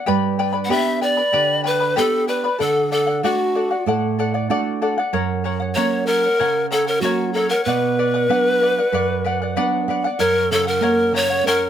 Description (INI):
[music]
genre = andean folk, Andean ensemble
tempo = 95 BPM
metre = 4/4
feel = straight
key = B minor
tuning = A4 = 438 Hz
[part]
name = charango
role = accompaniment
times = 0.0-11.7 s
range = G4 to B5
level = -23 LUFS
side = left 4 dB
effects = none
[part]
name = nylon-string guitar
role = accompaniment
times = 0.1-11.7 s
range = F#2 to F#5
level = -23 LUFS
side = right 7 dB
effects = none
[part]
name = breathy bright pan flute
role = melody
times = 0.6-11.7 s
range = F#4 to F#5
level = -18 LUFS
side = left 1 dB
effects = none
[sound]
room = moderate studio reverb, RT60 0.6 s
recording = none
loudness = -17 LUFS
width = side -9 dB against mid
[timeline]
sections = 0.0-10.2 A section; 10.2-11.7 B section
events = nylon-string guitar fill 9.2-10.2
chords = 0.1 G; 2.6 D; 5.1 F#; 7.7 Bm; 10.2 F#